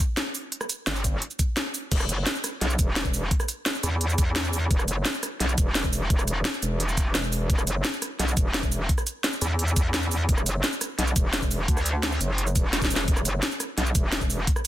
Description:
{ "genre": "dark technical drum and bass", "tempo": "172 BPM", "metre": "4/4", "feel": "straight", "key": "E minor", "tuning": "A4 = 440 Hz", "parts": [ { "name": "drum and bass drum kit", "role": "drums", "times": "0.0-14.7 s", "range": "crash cymbal, hi-hat, rim click, shaker, snare drum", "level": "-27 LUFS", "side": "equal", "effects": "none" }, { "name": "electronic kick drum", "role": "drums", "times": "0.0-14.5 s", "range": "none", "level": "-24 LUFS", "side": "equal", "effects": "none" }, { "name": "metallic wobble bass", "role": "bass", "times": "0.9-14.5 s", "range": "E1 to E2", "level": "-26 LUFS", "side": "equal", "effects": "chorus, tube saturation" } ], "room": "little or no reverb", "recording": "dense, heavily limited modern master", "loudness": "-23 LUFS", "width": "side -14 dB against mid", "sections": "0.0-1.9 A section; 1.9-14.7 A section", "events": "drop 0.0-1.9, 1.9-14.7; break 1.6-1.9; drum fill 12.7-13.1", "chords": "none", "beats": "0.17 | 0.52 0.87 1.22 1.57 | 1.92 2.26 2.61 2.96 | 3.31 3.66 4.01 4.36 | 4.71 5.05 5.40 5.75 | 6.10 6.45 6.80 7.15 | 7.50 7.85 8.20 8.54 | 8.89 9.24 9.59 9.94 | 10.29 10.64 10.98 11.33 | 11.68 12.03 12.38 12.73 | 13.08 13.43 13.78 14.12 | 14.47" }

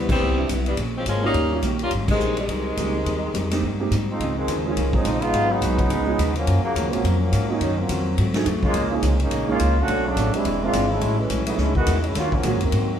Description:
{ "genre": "jazz, big band swing", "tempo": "211 BPM", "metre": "4/4", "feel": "swing 59% on 8ths", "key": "Ab major, Db major from 4.2 s", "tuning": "A4 = 440 Hz", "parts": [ { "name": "warm saxophone section", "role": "melody", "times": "0.0-3.9 s", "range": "C3 to F4", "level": "-24 LUFS", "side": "left 1 dB", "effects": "none" }, { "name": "vintage hollow-body jazz guitar", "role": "accompaniment", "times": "0.0-12.9 s", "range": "Gb2 to Db5", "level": "-29 LUFS", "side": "left 1 dB", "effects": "none" }, { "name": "upright bass", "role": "bass", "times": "0.0-13.0 s", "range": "E1 to Bb2", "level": "-24 LUFS", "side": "equal", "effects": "none" }, { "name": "swinging big-band drum kit", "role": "drums", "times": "0.1-12.8 s", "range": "crash cymbal, hi-hat, kick drum, ride cymbal, snare drum", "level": "-28 LUFS", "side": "equal", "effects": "none" }, { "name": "warm upright piano", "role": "accompaniment", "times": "0.4-12.6 s", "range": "Gb3 to Bb4", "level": "-28 LUFS", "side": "right 5 dB", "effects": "none" }, { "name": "clear trombone section", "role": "second line", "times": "4.1-13.0 s", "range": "Db3 to Gb4", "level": "-23 LUFS", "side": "right 1 dB", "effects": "none" } ], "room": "wet club reverb, RT60 0.8 s", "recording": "heard from further back in the room", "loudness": "-19 LUFS", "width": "side -9 dB against mid", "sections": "0.0-4.2 A section; 4.2-13.0 B section", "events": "band accent 0.1, 2.1; trombone section solo 4.2-13.0", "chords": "0.0 Cmaj7; 0.8 Bbm7; 1.3 Eb7; 1.9 Abmaj7; 4.2 Dbmaj9; 5.3 Abm7; 5.9 Db9; 6.5 Gbmaj7; 7.6 Ebm9; 8.2 Ab7b9; 8.8 Db6; 9.9 Cbm9; 10.5 Eaug7; 11.0 Amaj7; 12.2 Ebm11", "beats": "0.21 0.49 | 0.78 1.06 1.35 1.63 | 1.92 2.20 2.49 2.77 | 3.06 3.34 3.63 3.91 | 4.20 4.48 4.77 5.05 | 5.34 5.62 5.91 6.19 | 6.47 6.76 7.04 7.33 | 7.61 7.90 8.18 8.46 | 8.75 9.03 9.32 9.60 | 9.89 10.17 10.46 10.74 | 11.02 11.31 11.59 11.87 | 12.16 12.44 12.73" }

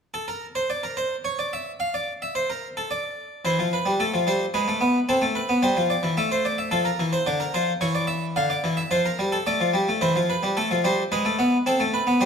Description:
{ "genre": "classical, baroque-style two-part invention for harpsichord", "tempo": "110 BPM", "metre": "3/4", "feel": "straight", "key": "D minor", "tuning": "A4 = 440 Hz", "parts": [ { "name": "harpsichord", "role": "solo", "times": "0.1-12.3 s", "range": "D3 to F5", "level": "-21 LUFS", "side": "equal", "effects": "none" } ], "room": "wet recital hall reverb, RT60 1.5 s", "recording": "none", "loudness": "-21 LUFS", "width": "side -6 dB against mid", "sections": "0.1-12.3 A section", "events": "none", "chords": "0.1 N.C.; 3.5 Am/E; 4.5 G#m; 5.1 Am; 6.7 Dm; 7.8 C#m/E; 8.4 Dm; 10.0 Am/E; 11.1 G#m; 11.7 Am", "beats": "| 0.14 0.70 1.25 | 1.80 2.36 2.91 | 3.45 4.00 4.54 | 5.08 5.63 6.17 | 6.72 7.26 7.81 | 8.35 8.90 9.46 | 10.01 10.56 11.12 | 11.67 12.22" }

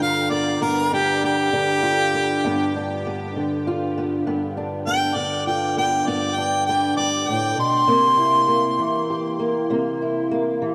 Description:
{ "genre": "acoustic country blues, solo or duo", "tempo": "66 BPM (dotted quarters)", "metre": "12/8", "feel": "straight", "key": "G mixolydian", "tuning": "A4 = 440 Hz", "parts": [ { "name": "warm harmonica", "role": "melody", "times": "0.0-9.4 s", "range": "G4 to C6", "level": "-23 LUFS", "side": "equal", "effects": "none" }, { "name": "fingerpicked old ladder-braced acoustic guitar", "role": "accompaniment", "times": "0.0-10.7 s", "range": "G2 to G4", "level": "-25 LUFS", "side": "equal", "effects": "analog chorus" } ], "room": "wet huge ambient reverb, RT60 6.1 s", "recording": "dreamy mix soaked in reverb", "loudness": "-21 LUFS", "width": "mono", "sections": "0.0-10.7 A section", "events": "harmonica solo 0.0-10.7", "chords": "0.0 G7; 7.9 C7", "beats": "| 0.62 1.52 2.43 3.34 | 4.25 5.16 6.07 6.98 | 7.88 8.79 9.70 10.61" }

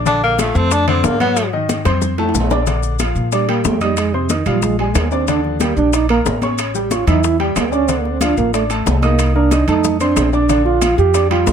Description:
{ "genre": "Afro-Cuban jazz", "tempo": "184 BPM", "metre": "4/4", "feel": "straight", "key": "Bb major", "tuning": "A4 = 440 Hz", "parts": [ { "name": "clear concert grand piano", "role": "accompaniment", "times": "0.0-11.5 s", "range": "D3 to Eb6", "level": "-20 LUFS", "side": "left 4 dB", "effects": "none" }, { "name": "upright bass", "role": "bass", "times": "0.0-11.5 s", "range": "A1 to Bb2", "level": "-19 LUFS", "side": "equal", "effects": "none" }, { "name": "warm tenor saxophone", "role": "melody", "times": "0.1-1.5 s", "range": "A3 to D4", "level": "-16 LUFS", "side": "left 1 dB", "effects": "none" }, { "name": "bongos", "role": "percussion", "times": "0.1-11.5 s", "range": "none", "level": "-25 LUFS", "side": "left 10 dB", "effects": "none" }, { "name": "congas", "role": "percussion", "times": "0.1-11.5 s", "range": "none", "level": "-25 LUFS", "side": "left 2 dB", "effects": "none" }, { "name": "maracas", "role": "percussion", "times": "0.1-11.5 s", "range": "none", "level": "-27 LUFS", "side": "left 10 dB", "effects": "none" }, { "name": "timbales", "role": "percussion", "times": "0.1-11.5 s", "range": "none", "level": "-25 LUFS", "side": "right 4 dB", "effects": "none" }, { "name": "trombone with bucket mute", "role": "second line", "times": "3.3-11.5 s", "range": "C3 to G4", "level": "-17 LUFS", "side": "right 7 dB", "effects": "none" } ], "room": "light reverb", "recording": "close, detailed microphones", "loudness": "-13 LUFS", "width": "side -8 dB against mid", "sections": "0.0-2.7 A section; 2.7-11.5 A section", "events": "tenor saxophone solo 0.0-2.7; drum fill 1.9-2.7; trombone solo 2.7-11.5", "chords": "0.1 A#maj7; 1.4 G#5; 2.0 F; 2.7 Bb6; 4.0 F5; 4.6 Bb7; 5.3 Ebmaj7; 6.6 A7; 7.9 Dm7; 9.2 Cm7; 9.8 F6; 10.5 Bb6", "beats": "| 0.06 0.39 0.72 1.04 | 1.37 1.69 2.02 2.35 | 2.67 3.00 3.32 3.65 | 3.98 4.30 4.63 4.96 | 5.28 5.61 5.93 6.26 | 6.58 6.91 7.24 7.56 | 7.89 8.21 8.54 8.87 | 9.19 9.52 9.84 10.17 | 10.49 10.82 11.14 11.47" }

